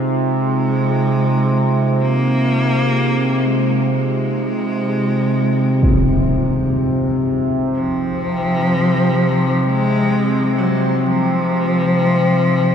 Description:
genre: dark ambient drone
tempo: free time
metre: none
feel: none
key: F minor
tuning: A4 = 442 Hz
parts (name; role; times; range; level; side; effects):
- dark analog pad; sustained chords; 0.0-12.7 s; Eb4 to C5; -28 LUFS; right 1 dB; chorus, shimmer reverb
- analog drone; drone; 0.0-12.7 s; C3; -17 LUFS; equal; chorus, phaser
- bronze singing bowl; texture; 0.0-12.7 s; Ab4; -37 LUFS; left 4 dB; none
- rich cello; melody; 0.1-12.7 s; F3 to Bb3; -19 LUFS; equal; shimmer reverb, ping-pong delay
- impact; percussion; 5.8-6.0 s; none; -22 LUFS; right 1 dB; low-pass filter on sfx
room: wet cathedral reverb, RT60 7.0 s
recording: none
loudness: -14 LUFS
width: side -8 dB against mid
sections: 0.0-12.7 A section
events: fade-out on analog synth pad 0.0-12.7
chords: 0.0 Fm

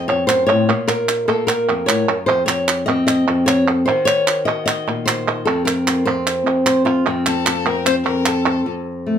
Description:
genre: flamenco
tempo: 151 BPM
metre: 4/4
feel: straight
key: F phrygian dominant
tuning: A4 = 441 Hz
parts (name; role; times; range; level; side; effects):
- flamenco guitar; melody; 0.0-9.2 s; F2 to Eb5; -17 LUFS; left 1 dB; none
- palmas hand claps; percussion; 0.1-8.7 s; none; -20 LUFS; right 5 dB; none
- warm violin; second line; 7.3-8.7 s; A4 to C5; -22 LUFS; left 8 dB; none
room: moderate studio ambience, RT60 0.5 s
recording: none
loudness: -15 LUFS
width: side -8 dB against mid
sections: 0.0-8.7 A section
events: none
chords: 0.0 F; 0.7 Bbm; 2.3 F5; 3.9 Ebm; 5.5 F5; 7.1 F

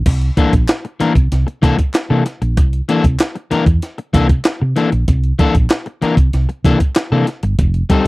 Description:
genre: funk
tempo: 96 BPM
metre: 4/4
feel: straight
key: C mixolydian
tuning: A4 = 439 Hz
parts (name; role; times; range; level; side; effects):
- hollow-body short-scale fingered electric bass; bass; 0.1-7.8 s; F1 to C3; -15 LUFS; equal; none
- breakbeat sampler-style drum kit; drums; 0.1-8.0 s; crash cymbal, hi-hat, kick drum, snare drum; -15 LUFS; equal; none
- electric guitar at the edge of break-up; accompaniment; 0.4-8.0 s; E3 to Bb4; -15 LUFS; left 3 dB; none
- group handclap; percussion; 0.7-7.1 s; none; -29 LUFS; left 2 dB; none
room: little or no reverb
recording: dry, close 1970s-style studio recording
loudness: -13 LUFS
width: side -21 dB against mid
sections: 0.1-8.1 A section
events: none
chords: 0.1 C13

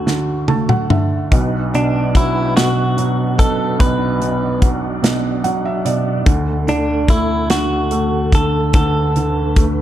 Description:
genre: six-eight pop ballad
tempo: 48 BPM (dotted quarters)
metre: 6/8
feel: straight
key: B minor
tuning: A4 = 443 Hz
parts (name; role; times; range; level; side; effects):
- direct-recorded clean electric guitar; melody; 0.0-9.6 s; D4 to B4; -20 LUFS; equal; none
- felt-muted upright piano; accompaniment; 0.0-9.8 s; B1 to A5; -19 LUFS; right 2 dB; none
- modern studio drum kit; drums; 0.1-9.8 s; hi-hat, kick drum, snare drum, toms; -16 LUFS; equal; none
- mellow tonewheel organ; sustained chords; 1.3-9.8 s; D2 to F#5; -21 LUFS; left 1 dB; chorus vibrato, slow rotary speaker
room: light reverb, small room reverb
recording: dark, warm production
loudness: -14 LUFS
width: side -12 dB against mid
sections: 0.0-9.8 A section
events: drum fill 0.1-1.3; felt piano fill 0.1-1.3, 5.0-6.3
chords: 0.0 D; 1.3 Bm; 6.3 D

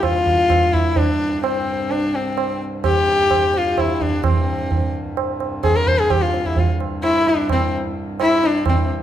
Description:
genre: indian classical, Hindustani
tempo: 129 BPM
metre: 3/4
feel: straight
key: C major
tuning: A4 = 445 Hz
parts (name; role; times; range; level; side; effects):
- warm sarangi; melody; 0.0-8.9 s; C4 to C5; -18 LUFS; left 2 dB; none
- hand-pumped harmonium; drone; 0.0-9.0 s; C2 to G2; -28 LUFS; equal; none
- tabla; percussion; 0.0-8.8 s; none; -21 LUFS; right 3 dB; none
room: wet recital hall reverb, RT60 1.8 s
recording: recorded in a church or concert hall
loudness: -16 LUFS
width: side -11 dB against mid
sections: 0.0-9.0 A section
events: none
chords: none

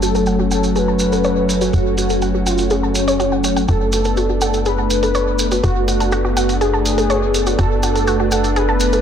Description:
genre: melodic techno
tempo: 123 BPM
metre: 4/4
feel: straight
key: unclear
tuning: A4 = 439 Hz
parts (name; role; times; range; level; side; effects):
- analog synth brass; melody; 0.0-9.0 s; C#4 to B4; -20 LUFS; equal; chorus, cassette tape, dub echo
- lush unison pad; sustained chords; 0.0-9.0 s; F#3 to F#4; -20 LUFS; equal; chorus
- wide unison pluck; arpeggios; 0.0-9.0 s; F#4 to A5; -22 LUFS; equal; analog delay
- tight sequencer bass; bass; 0.0-9.0 s; F#1; -20 LUFS; equal; none
- electronic hi-hat; drums; 0.0-9.0 s; none; -29 LUFS; right 1 dB; low-pass filter on hats, low-pass filter on room
- maracas; percussion; 0.0-9.0 s; none; -27 LUFS; right 2 dB; analog delay
room: moderate spring reverb, RT60 1.6 s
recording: echo-heavy mix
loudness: -14 LUFS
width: side -8 dB against mid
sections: 0.0-9.0 A section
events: filter sweep on analog polysynth 0.0-9.0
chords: 0.0 F#m; 3.7 Bm7/F#

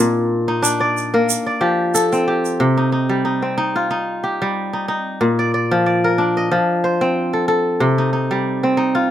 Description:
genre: west african traditional, West African string and xylophone music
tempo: 92 BPM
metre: 4/4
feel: swing 55% on 16ths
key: C dorian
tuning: A4 = 440 Hz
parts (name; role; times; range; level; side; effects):
- kora; arpeggios; 0.0-9.1 s; Bb2 to Eb5; -16 LUFS; equal; none
- tube shaker; percussion; 0.6-2.5 s; none; -22 LUFS; right 7 dB; none
room: light reverb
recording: close, detailed microphones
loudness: -16 LUFS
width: side -11 dB against mid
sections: 0.0-2.6 A section; 2.6-9.1 B section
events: none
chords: 0.0 Bb; 1.3 F; 2.6 Cm; 5.2 Bb; 6.5 F; 7.8 Cm

